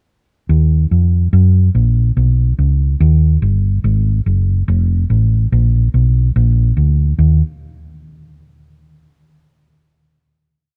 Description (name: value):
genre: uptempo gospel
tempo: 143 BPM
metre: 4/4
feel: swing 58% on 8ths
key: Eb minor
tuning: A4 = 439 Hz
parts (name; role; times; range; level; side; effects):
- hollow-body short-scale fingered electric bass; solo; 0.5-7.4 s; F1 to Gb2; -14 LUFS; equal; none
room: little or no reverb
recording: rough home demo mix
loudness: -14 LUFS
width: mono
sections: 0.5-7.2 breakdown; 7.2-8.9 final note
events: none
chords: none